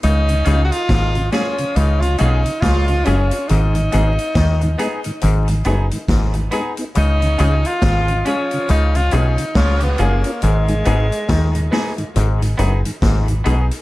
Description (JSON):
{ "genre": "roots reggae", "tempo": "69 BPM", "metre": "4/4", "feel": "swing 60% on 16ths", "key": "Db mixolydian", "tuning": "A4 = 445 Hz", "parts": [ { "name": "warm tenor saxophone", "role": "melody", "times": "0.0-12.1 s", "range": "Ab3 to Gb4", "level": "-22 LUFS", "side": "equal", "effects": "dub echo" }, { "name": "auto-wah clav", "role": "riff", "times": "0.0-13.6 s", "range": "Gb2 to Eb3", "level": "-28 LUFS", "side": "left 6 dB", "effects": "none" }, { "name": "deep dub fingered electric bass", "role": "bass", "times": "0.0-13.7 s", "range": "Gb1 to Eb2", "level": "-16 LUFS", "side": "equal", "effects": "none" }, { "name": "vintage drum kit", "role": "drums", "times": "0.0-13.8 s", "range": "hi-hat, kick drum, snare drum", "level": "-24 LUFS", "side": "equal", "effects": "none" }, { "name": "warm horn section", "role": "second line", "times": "0.3-10.2 s", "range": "Db3 to F4", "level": "-30 LUFS", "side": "right 1 dB", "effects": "none" }, { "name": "mellow tonewheel organ", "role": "accompaniment", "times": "0.3-13.6 s", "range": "Ab2 to F4", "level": "-27 LUFS", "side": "equal", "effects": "chorus vibrato, slow rotary speaker" }, { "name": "semi-hollow electric guitar", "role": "accompaniment", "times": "0.4-13.7 s", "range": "Cb4 to Ab4", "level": "-30 LUFS", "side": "right 2 dB", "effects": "dub echo" }, { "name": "warm upright piano", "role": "stabs", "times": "0.5-13.8 s", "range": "Cb4 to Ab4", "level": "-27 LUFS", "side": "left 4 dB", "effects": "none" } ], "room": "studio ambience", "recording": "echo-heavy mix, vinyl crackle, lossy compression artefacts", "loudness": "-14 LUFS", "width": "side -18 dB against mid", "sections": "0.0-13.8 A section", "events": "none", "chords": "0.0 Db; 3.5 Abm; 7.0 Db; 10.4 Abm" }